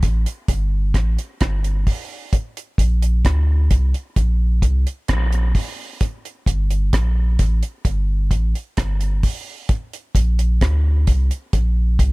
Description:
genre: dub reggae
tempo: 65 BPM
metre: 4/4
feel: straight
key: unclear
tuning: A4 = 439 Hz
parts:
  - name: warm sub bass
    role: bass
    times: 0.0-12.1 s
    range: G1 to D2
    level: -17 LUFS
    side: equal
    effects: none
  - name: deep reggae drum kit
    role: drums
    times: 0.0-12.1 s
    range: hi-hat, kick drum, rim click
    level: -19 LUFS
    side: equal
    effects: none
room: little or no reverb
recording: none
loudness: -17 LUFS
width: side -24 dB against mid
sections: 0.0-12.1 A section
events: none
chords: none

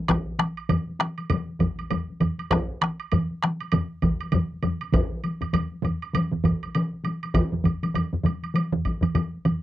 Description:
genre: japanese traditional, taiko drum ensemble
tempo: 99 BPM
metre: 4/4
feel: swing 60% on 16ths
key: none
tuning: none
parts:
  - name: taiko ensemble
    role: percussion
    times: 0.1-9.6 s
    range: none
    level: -27 LUFS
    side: left 2 dB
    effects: none
  - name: taiko ensemble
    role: percussion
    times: 0.1-9.6 s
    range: none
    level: -28 LUFS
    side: left 2 dB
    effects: none
  - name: taiko ensemble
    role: percussion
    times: 0.1-9.6 s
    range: none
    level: -26 LUFS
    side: right 4 dB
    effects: none
  - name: taiko ensemble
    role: percussion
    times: 0.1-9.0 s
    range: none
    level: -27 LUFS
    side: equal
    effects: none
  - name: woodblock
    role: percussion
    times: 0.1-9.6 s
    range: none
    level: -34 LUFS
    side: right 9 dB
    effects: none
room: moderate booth ambience, RT60 0.2 s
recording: dry, close 1970s-style studio recording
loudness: -23 LUFS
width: side -14 dB against mid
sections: 0.1-9.6 A section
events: none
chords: none

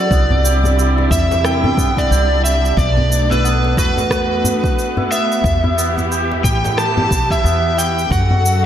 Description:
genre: organic downtempo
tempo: 90 BPM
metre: 4/4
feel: swing 59% on 16ths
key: E minor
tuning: A4 = 443 Hz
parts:
  - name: overdriven slide guitar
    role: melody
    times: 0.0-8.6 s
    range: B4 to A5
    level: -19 LUFS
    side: equal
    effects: tape echo, slapback echo
  - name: muted studio string section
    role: sustained chords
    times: 0.0-8.7 s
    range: C3 to A4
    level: -22 LUFS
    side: right 1 dB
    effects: sidechain pumping
  - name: santur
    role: arpeggios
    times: 0.0-8.7 s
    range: B3 to G4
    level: -23 LUFS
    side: equal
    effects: tape echo, slapback echo
  - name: bronze singing bowl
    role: texture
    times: 0.0-8.7 s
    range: none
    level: barely audible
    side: none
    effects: none
  - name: upright bass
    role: bass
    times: 0.1-8.7 s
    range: G1 to A2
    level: -17 LUFS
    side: equal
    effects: none
  - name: electronic kick drum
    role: drums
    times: 0.1-8.3 s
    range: none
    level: -19 LUFS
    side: equal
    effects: none
  - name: electronic shaker and rim click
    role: drums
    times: 0.1-8.6 s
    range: none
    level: -25 LUFS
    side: right 1 dB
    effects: none
  - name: djembe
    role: percussion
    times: 0.3-8.4 s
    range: none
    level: -24 LUFS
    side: left 2 dB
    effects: none
room: moderate recital hall reverb, RT60 1.6 s, small room ambience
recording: big arena sound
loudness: -13 LUFS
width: side -10 dB against mid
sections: 0.0-8.7 A section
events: none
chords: 0.1 C69; 2.8 Bm7; 5.4 Em; 8.1 F#m7

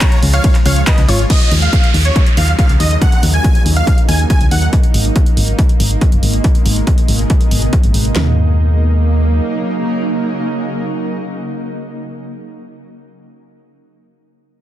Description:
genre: uplifting trance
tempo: 140 BPM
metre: 4/4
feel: straight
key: Eb minor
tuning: A4 = 440 Hz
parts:
  - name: dense compressed supersaw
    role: melody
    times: 0.0-4.7 s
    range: F4 to Bb5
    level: -20 LUFS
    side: right 1 dB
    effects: sidechain pumping, tape echo
  - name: analog pluck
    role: second line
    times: 0.0-1.2 s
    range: Db5 to Bb5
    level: -26 LUFS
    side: left 2 dB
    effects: chorus, sidechain pumping, tape echo
  - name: shimmering ambient pad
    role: sustained chords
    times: 0.0-12.2 s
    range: Cb3 to F4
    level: -21 LUFS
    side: right 1 dB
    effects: chorus, built-in reverb, sidechain pumping
  - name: punchy analog drum machine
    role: drums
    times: 0.0-8.1 s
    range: crash cymbal, handclaps, hi-hat, ride cymbal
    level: -22 LUFS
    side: right 1 dB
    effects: overdrive
  - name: techno drum kit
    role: drums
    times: 0.0-8.3 s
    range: kick drum, snare drum, toms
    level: -13 LUFS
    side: equal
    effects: none
  - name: solid FM bass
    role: bass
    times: 0.2-9.4 s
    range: Gb1 to Eb2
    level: -13 LUFS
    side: equal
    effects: sidechain pumping
  - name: downlifter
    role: sound effects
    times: 1.3-4.7 s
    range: none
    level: -24 LUFS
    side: right 2 dB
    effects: none
room: little or no reverb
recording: dense, heavily limited modern master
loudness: -11 LUFS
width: side -13 dB against mid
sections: 0.0-1.3 A section; 1.3-8.2 B section; 8.2-11.6 C section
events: drop 0.0-1.3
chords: 0.0 Db; 1.3 Ebm7; 4.7 Abmadd9; 8.2 Ebm7

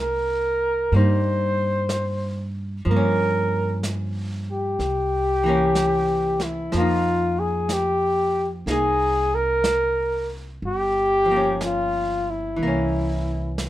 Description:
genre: jazz ballad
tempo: 62 BPM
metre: 4/4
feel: swing 66% on 8ths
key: F minor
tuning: A4 = 440 Hz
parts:
  - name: warm flugelhorn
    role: melody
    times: 0.0-13.6 s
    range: E4 to C5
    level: -22 LUFS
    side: left 1 dB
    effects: none
  - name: archtop guitar, miked and amplified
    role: accompaniment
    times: 0.0-13.7 s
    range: E3 to Ab4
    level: -27 LUFS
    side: equal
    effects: none
  - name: upright bass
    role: bass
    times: 0.0-13.7 s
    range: G1 to G2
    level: -26 LUFS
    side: right 1 dB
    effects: none
  - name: vintage brush drum kit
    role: drums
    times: 0.9-13.7 s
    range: brushed snare drum, hi-hat, snare drum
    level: -33 LUFS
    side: right 2 dB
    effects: none
room: light reverb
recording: minimal, uncompressed stereo recording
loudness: -20 LUFS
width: side -14 dB against mid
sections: 0.0-13.7 A section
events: none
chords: 0.0 Cm7; 2.9 Gm7b5; 4.8 C7b9; 6.7 Fm7; 10.6 Gm7b5; 12.6 C7b9

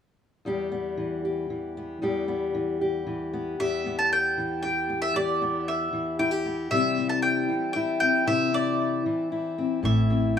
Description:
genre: folk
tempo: 115 BPM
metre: 3/4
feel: straight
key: E minor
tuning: A4 = 437 Hz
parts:
  - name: fingerpicked steel-string acoustic guitar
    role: accompaniment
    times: 0.5-10.4 s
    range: E2 to G4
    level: -26 LUFS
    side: left 3 dB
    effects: none
  - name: mandolin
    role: melody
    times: 3.6-10.4 s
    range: D5 to A5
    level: -26 LUFS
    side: right 1 dB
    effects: tape echo
  - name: upright bass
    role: bass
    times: 9.8-10.4 s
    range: A1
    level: -27 LUFS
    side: right 1 dB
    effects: none
room: light reverb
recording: rough home demo mix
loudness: -24 LUFS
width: side -8 dB against mid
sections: 0.5-3.6 A section; 3.6-10.4 B section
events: none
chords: 0.5 Em; 6.7 C; 9.8 Am

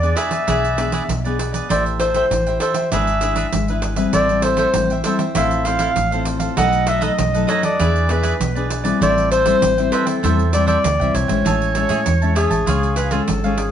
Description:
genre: samba and choro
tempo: 98 BPM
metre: 4/4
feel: straight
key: A minor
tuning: A4 = 440 Hz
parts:
  - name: breathy clarinet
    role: melody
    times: 0.0-13.7 s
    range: G#4 to F#5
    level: -20 LUFS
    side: equal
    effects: none
  - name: cavaquinho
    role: accompaniment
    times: 0.0-13.7 s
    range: D4 to A5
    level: -24 LUFS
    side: right 4 dB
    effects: none
  - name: nylon-string guitar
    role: accompaniment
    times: 0.0-13.7 s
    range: F#2 to C5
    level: -23 LUFS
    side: left 5 dB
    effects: none
  - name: vintage muted fingered electric bass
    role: bass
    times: 0.0-13.7 s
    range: G#1 to A2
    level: -22 LUFS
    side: equal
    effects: none
  - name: pandeiro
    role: percussion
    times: 0.0-13.7 s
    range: none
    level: -25 LUFS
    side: right 4 dB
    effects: none
room: wet studio reverb, RT60 0.7 s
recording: band playing live in one room, nothing above 10.4 kHz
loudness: -15 LUFS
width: side -9 dB against mid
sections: 0.0-11.5 A section; 11.5-13.7 B section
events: none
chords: 0.0 E7; 1.7 Am7; 2.9 E7/G#; 4.1 Am7; 5.4 Fmaj7/A; 6.6 B7; 7.8 E7; 9.0 Am7; 11.5 Amaj7; 12.7 C#

